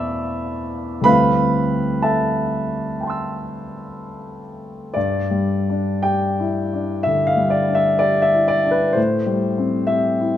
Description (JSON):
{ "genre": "classical, impressionist solo piano", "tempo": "53-68 BPM", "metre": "4/4", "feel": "rubato", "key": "G mixolydian", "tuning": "A4 = 440 Hz", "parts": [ { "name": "warm concert grand piano", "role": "solo", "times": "0.0-10.4 s", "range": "D2 to E6", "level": "-18 LUFS", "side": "left 1 dB", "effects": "none" } ], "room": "moderate recital hall reverb, RT60 1.6 s", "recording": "close, detailed microphones", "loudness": "-17 LUFS", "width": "side -11 dB against mid", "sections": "0.0-5.0 A section; 5.0-10.4 B section", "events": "none", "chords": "0.0 E7sus4; 1.1 D9sus4; 5.0 G5; 9.0 Am7", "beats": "0.12 | 1.06 2.05 3.01 3.97 | 4.96 6.04 7.05 8.02 | 8.97 9.91" }